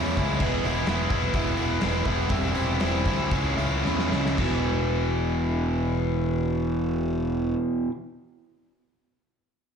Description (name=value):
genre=classic rock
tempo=109-128 BPM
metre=4/4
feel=straight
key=E major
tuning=A4 = 441 Hz
part: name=biting overdriven guitar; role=riff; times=0.0-7.9 s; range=E2 to E4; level=-25 LUFS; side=equal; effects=slapback echo
part: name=fuzz fingered electric bass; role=bass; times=0.0-7.5 s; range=E1 to E2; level=-28 LUFS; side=equal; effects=overdrive
part: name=big rock drum kit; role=drums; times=0.2-4.5 s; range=crash cymbal, hi-hat, kick drum, snare drum, splash cymbal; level=-30 LUFS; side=equal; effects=none
room=small room ambience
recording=live gig heard through the venue's PA, club reverb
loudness=-23 LUFS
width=side -7 dB against mid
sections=0.0-4.4 A section; 4.4-8.8 B section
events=slowing down 0.4-4.4; drum fill 3.9-4.4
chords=0.4 E; 2.3 C/E; 3.3 C#m; 4.4 E5